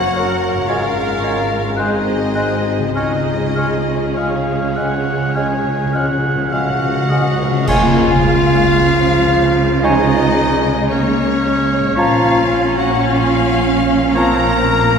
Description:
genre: classical, slow romantic movement for symphony orchestra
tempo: 50-58 BPM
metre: 4/4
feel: rubato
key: Db major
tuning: A4 = 438 Hz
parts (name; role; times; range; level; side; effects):
- warm studio violin section; melody; 0.0-15.0 s; Db5 to Bb5; -25 LUFS; left 2 dB; none
- bright clarinet; second line; 0.0-15.0 s; Db4 to Bb4; -20 LUFS; left 1 dB; none
- warm studio violin section; second line; 0.0-15.0 s; Ab3 to Bb5; -24 LUFS; left 2 dB; none
- rich studio viola section; accompaniment; 0.0-15.0 s; F3 to Db5; -22 LUFS; right 1 dB; none
- dark French horn section; sustained chords; 0.0-14.6 s; Bb3 to Ab4; -26 LUFS; left 2 dB; none
- concert harp; arpeggios; 0.0-15.0 s; Gb2 to Bb4; -26 LUFS; equal; none
- rich studio cello section; bass; 0.0-15.0 s; Gb2 to Db3; -24 LUFS; right 3 dB; none
- warm studio double bass section; bass; 0.0-15.0 s; Gb1 to Db2; -23 LUFS; right 3 dB; none
- silver concert flute; second line; 0.1-14.7 s; Ab5 to Gb6; -25 LUFS; left 1 dB; none
- warm oboe; second line; 0.2-14.6 s; Bb4 to Ab5; -25 LUFS; right 1 dB; none
- mellow bassoon; accompaniment; 0.2-14.6 s; F3 to Ab3; -26 LUFS; equal; none
- cymbal swell, clash cymbals and concert bass drum; percussion; 3.0-9.8 s; none; -27 LUFS; equal; none
- timpani; percussion; 3.0-9.3 s; Db3; -23 LUFS; right 1 dB; none
- warm trombone section; sustained chords; 7.7-14.6 s; F3 to Bb3; -30 LUFS; right 2 dB; none
room: wet church reverb, RT60 3.9 s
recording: minimal, uncompressed stereo recording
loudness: -13 LUFS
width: side -6 dB against mid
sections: 0.0-7.7 A section; 7.7-15.0 B section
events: timpani fill 3.0-7.7; band accent 7.7-8.8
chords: 0.0 Gb; 0.7 Db/Ab; 1.8 Ab7; 3.0 Db; 12.0 Bbm

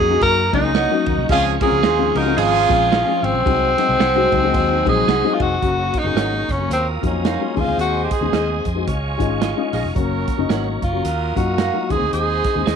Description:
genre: uptempo 1960s-style soul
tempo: 111 BPM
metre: 4/4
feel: swing 59% on 8ths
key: Db major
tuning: A4 = 440 Hz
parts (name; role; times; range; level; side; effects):
- warm tenor saxophone; melody; 0.0-12.8 s; C4 to Bb4; -19 LUFS; right 1 dB; none
- vibraphone with soft mallets; second line; 0.0-5.1 s; C5 to Bb5; -28 LUFS; right 13 dB; none
- dark upright piano; accompaniment; 0.0-12.8 s; F3 to Ab4; -23 LUFS; left 12 dB; none
- tonewheel organ; sustained chords; 0.0-12.8 s; Db5 to Eb6; -30 LUFS; equal; chorus vibrato, stopped rotary speaker
- vintage muted fingered electric bass; bass; 0.0-12.8 s; F1 to Gb2; -24 LUFS; equal; none
- warm soul drum kit; drums; 0.2-12.8 s; hi-hat, kick drum, ride cymbal, snare drum; -24 LUFS; right 3 dB; none
- mellow electric guitar; riff; 0.5-8.5 s; Eb3 to Ab4; -28 LUFS; left 13 dB; none
- electric guitar through a small old amp; stabs; 0.7-12.8 s; F4 to Gb5; -30 LUFS; right 13 dB; wide subtle chorus, slapback echo
- clear horn section; second line; 1.3-12.8 s; Db3 to Db5; -27 LUFS; right 12 dB; none
room: light reverb, small room ambience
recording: 1960s-style stereo with parts hard left and right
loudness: -16 LUFS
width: side -7 dB against mid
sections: 0.0-5.6 A section; 5.6-12.8 B section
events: none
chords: 0.0 Ebm7; 1.3 Dbmaj7; 3.5 Ab7/C; 5.6 Gb; 6.7 Ebmadd9; 7.5 Ab; 8.9 Dbadd9; 10.0 Gb; 11.0 Ebmadd9; 11.9 Ab

